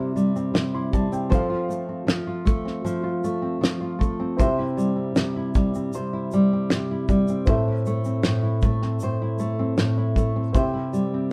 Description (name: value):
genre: acoustic pop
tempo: 78 BPM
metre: 4/4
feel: straight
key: C major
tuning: A4 = 441 Hz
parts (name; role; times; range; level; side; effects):
- dark upright piano; accompaniment; 0.0-11.3 s; C4 to C6; -33 LUFS; equal; none
- nylon-string guitar; accompaniment; 0.0-11.3 s; A2 to C5; -25 LUFS; equal; none
- cloth-damped thuddy drum kit; drums; 0.2-11.1 s; kick drum, shaker, snare drum; -25 LUFS; equal; none
room: moderate studio reverb, RT60 0.7 s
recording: band playing live in one room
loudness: -24 LUFS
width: mono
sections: 0.0-11.3 A section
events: none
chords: 0.0 C; 1.3 F; 4.4 C; 7.5 Am; 10.5 C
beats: 0.55 | 1.32 2.09 2.86 3.63 | 4.40 5.17 5.93 6.70 | 7.47 8.24 9.01 9.78 | 10.54 11.31